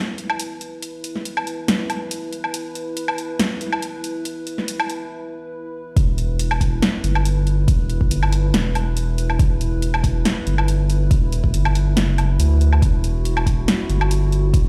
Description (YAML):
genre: deep dubstep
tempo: 140 BPM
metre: 4/4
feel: swing 54% on 16ths, half-time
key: E minor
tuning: A4 = 439 Hz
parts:
  - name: dark analog pad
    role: sustained chords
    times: 0.0-14.7 s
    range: E4 to B4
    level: -32 LUFS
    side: equal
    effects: lush chorus
  - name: deep house drum kit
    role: drums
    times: 0.2-14.6 s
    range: hi-hat, snare drum, woodblock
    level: -26 LUFS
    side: equal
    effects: overdrive
  - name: saturated sub bass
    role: bass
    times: 6.0-14.7 s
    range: E1 to D2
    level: -21 LUFS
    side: equal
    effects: none
  - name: electronic kick drum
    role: drums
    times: 6.0-14.6 s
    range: none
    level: -20 LUFS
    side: equal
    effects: overdrive
room: light reverb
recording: played on a big sound system in a bare room, large studio reverb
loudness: -20 LUFS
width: mono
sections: 0.0-6.0 A section; 6.0-14.7 B section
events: build-up 0.0-6.0; break 5.1-6.0; drop 6.0-14.7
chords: 0.0 E5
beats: 0.39 | 0.82 1.25 1.68 2.11 | 2.54 2.97 3.39 3.82 | 4.25 4.68 5.11 5.54 | 5.97 6.39 6.82 7.25 | 7.68 8.11 8.54 8.97 | 9.39 9.82 10.25 10.68 | 11.11 11.54 11.97 12.39 | 12.82 13.25 13.68 14.11 | 14.54